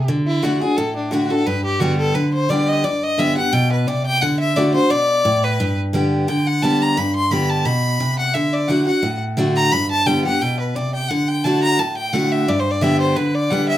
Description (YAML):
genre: bluegrass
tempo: 174 BPM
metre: 4/4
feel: swing 54% on 8ths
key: G major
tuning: A4 = 440 Hz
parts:
  - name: clear fiddle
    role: melody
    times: 0.0-13.8 s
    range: D4 to C6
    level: -20 LUFS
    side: left 1 dB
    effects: none
  - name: picked steel-string acoustic guitar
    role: accompaniment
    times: 0.0-13.8 s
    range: G2 to G4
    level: -18 LUFS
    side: equal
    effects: none
room: wet studio reverb, RT60 0.5 s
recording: heard from further back in the room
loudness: -16 LUFS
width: side -12 dB against mid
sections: 0.0-7.0 A section; 7.0-13.8 A section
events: fiddle solo 0.0-13.8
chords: 0.1 D; 1.5 G; 4.2 D; 5.6 G; 8.3 D; 9.7 G; 11.1 D; 12.5 G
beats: | 0.09 0.43 0.78 1.12 | 1.47 1.81 2.15 2.50 | 2.84 3.19 3.53 3.87 | 4.22 4.56 4.91 5.25 | 5.59 5.94 6.28 6.63 | 6.97 7.31 7.66 8.00 | 8.35 8.69 9.04 9.38 | 9.72 10.07 10.41 10.76 | 11.10 11.44 11.79 12.13 | 12.48 12.82 13.16 13.51